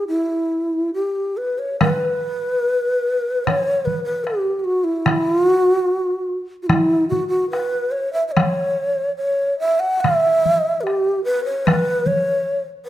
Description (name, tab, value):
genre	japanese traditional, Japanese chamber music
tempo	68-76 BPM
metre	2/4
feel	rubato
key	E kumoi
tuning	A4 = 439 Hz
part	breathy mellow long shakuhachi	melody	0.0-12.9 s	E4 to F#5	-18 LUFS	equal	none
part	taiko ensemble	percussion	1.8-12.2 s	none	-20 LUFS	equal	none
room	moderate recital hall reverb, RT60 1.4 s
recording	none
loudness	-17 LUFS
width	side -13 dB against mid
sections	0.0-1.8 A section; 1.8-12.9 B section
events	none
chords	none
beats	| 0.08 0.95 | 1.81 2.64 | 3.46 4.26 | 5.05 5.86 | 6.69 7.52 | 8.36 9.21 | 10.04 10.86 | 11.66 12.46